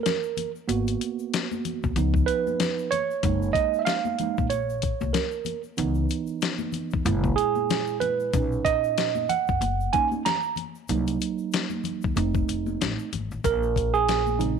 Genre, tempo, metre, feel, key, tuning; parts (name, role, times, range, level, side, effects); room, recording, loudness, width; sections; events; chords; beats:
hip hop, jazz-hop; 94 BPM; 4/4; swing 57% on 16ths; A4 = 441 Hz
tine electric piano; accompaniment; 0.0-14.6 s; Bb2 to A#5; -25 LUFS; right 9 dB; overdrive, auto-pan
dusty soul sampler-style drum kit; drums; 0.1-14.6 s; hi-hat, kick drum, snare drum; -28 LUFS; left 6 dB
congas and tube shaker; percussion; 0.1-14.6 s; -36 LUFS; left 12 dB
upright bass; bass; 0.7-14.5 s; F1 to F#2; -27 LUFS; left 2 dB
light reverb, studio reverb; 1960s-style stereo with parts hard left and right; -23 LUFS; side -6 dB against mid
0.0-13.4 A section; 13.4-14.6 B section
tine electric piano solo 0.0-13.4, 13.4-14.6
0.0 N.C.; 0.7 Abm7; 2.0 Db7; 3.2 Gb6 (rootless); 5.8 Dbm7; 7.1 Gb7; 8.3 Bmaj7; 10.9 Cm7b5; 12.2 F7; 13.4 Bbm7
0.04 | 0.68 1.32 1.96 2.60 | 3.23 3.87 4.51 5.15 | 5.79 6.43 7.06 7.70 | 8.34 8.98 9.62 10.26 | 10.89 11.53 12.17 12.81 | 13.45 14.09